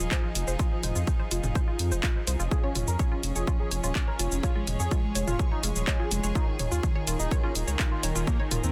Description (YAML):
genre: melodic techno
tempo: 125 BPM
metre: 4/4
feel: straight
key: unclear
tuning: A4 = 440 Hz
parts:
  - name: dark chamber string section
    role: sustained chords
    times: 0.0-8.7 s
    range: Eb3 to Ab4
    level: -40 LUFS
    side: equal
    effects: sidechain pumping
  - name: round analog bass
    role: bass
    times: 0.0-8.7 s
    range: Eb1 to F2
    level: -32 LUFS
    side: equal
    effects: tube saturation, sidechain pumping
  - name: house drum kit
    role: drums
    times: 0.0-8.7 s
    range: handclaps, hi-hat, shaker, toms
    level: -35 LUFS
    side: equal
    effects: none
  - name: granular cloud pad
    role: texture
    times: 0.0-8.7 s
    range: Eb4 to Eb5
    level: -42 LUFS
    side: equal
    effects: built-in reverb, sidechain pumping
  - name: analog pluck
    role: arpeggios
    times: 0.1-8.6 s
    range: F4 to Db5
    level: -40 LUFS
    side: equal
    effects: chorus, sidechain pumping, dub echo
  - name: electronic kick drum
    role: drums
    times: 0.1-8.4 s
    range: none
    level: -29 LUFS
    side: equal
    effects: none
  - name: unison lead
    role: melody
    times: 2.5-8.7 s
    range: Eb3 to Bb4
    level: -37 LUFS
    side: equal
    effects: subtle chorus, sidechain pumping
room: digital ambience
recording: dense, heavily limited modern master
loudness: -28 LUFS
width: mono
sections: 0.0-8.7 A section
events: filter sweep on synth pluck 0.0-8.7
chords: 0.0 Fm7; 2.5 Db; 6.4 Ebsus4